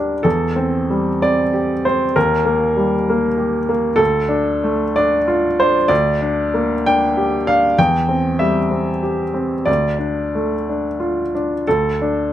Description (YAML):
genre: neoclassical minimalist piano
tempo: 60-66 BPM (dotted quarters)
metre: 6/8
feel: rubato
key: D minor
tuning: A4 = 441 Hz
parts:
  - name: clear baby grand piano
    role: solo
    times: 0.0-12.3 s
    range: D2 to G5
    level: -15 LUFS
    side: equal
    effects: none
room: light reverb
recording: none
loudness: -15 LUFS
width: side -12 dB against mid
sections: 0.0-11.7 A section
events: none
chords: 0.2 C/E; 2.2 Eb; 4.0 Dm; 5.9 Gm/D; 7.8 C/E; 9.7 Dm; 11.7 D5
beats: | 0.25 1.22 | 2.15 3.07 | 3.99 4.96 | 5.90 6.86 | 7.78 8.71 | 9.67 10.67 | 11.66